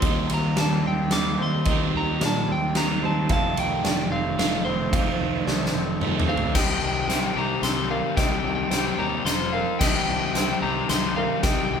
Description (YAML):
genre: post-rock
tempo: 110 BPM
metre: 3/4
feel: straight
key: C dorian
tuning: A4 = 436 Hz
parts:
  - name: lightly driven lead guitar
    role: melody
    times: 0.0-11.8 s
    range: C5 to D6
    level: -28 LUFS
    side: equal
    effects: none
  - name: felt-muted upright piano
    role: arpeggios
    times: 0.0-11.8 s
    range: Bb4 to F5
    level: -34 LUFS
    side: right 4 dB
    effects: none
  - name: twangy electric guitar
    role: arpeggios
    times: 0.0-11.8 s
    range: F2 to G4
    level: -34 LUFS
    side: left 4 dB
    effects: spring reverb
  - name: overdriven semi-hollow guitar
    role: riff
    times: 0.0-6.5 s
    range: F2 to Eb4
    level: -26 LUFS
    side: right 4 dB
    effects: phaser
  - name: fuzz picked electric bass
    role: bass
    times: 0.0-11.8 s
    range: F1 to Bb2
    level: -30 LUFS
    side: left 1 dB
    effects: overdrive
  - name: huge arena drum kit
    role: drums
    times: 0.0-11.6 s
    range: crash cymbal, hi-hat, kick drum, ride cymbal, snare drum, toms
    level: -26 LUFS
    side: equal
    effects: none
  - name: overdriven semi-hollow guitar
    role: riff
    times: 6.5-11.8 s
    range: C3 to C5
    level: -27 LUFS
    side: left 6 dB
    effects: none
room: moderate large studio reverb, RT60 1.1 s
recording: band playing live in one room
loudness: -21 LUFS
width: side -7 dB against mid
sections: 0.0-6.6 A section; 6.6-11.8 B section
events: drum fill 5.5-6.6, 6.6-11.8; build-up 6.6-11.8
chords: 0.0 Cm/Eb; 3.3 F7; 6.6 Cm; 9.3 F5; 9.8 Cm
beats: | 0.04 0.58 1.12 | 1.66 2.21 2.75 | 3.29 3.84 4.38 | 4.92 5.47 6.01 | 6.55 7.09 7.64 | 8.18 8.72 9.27 | 9.81 10.35 10.89 | 11.43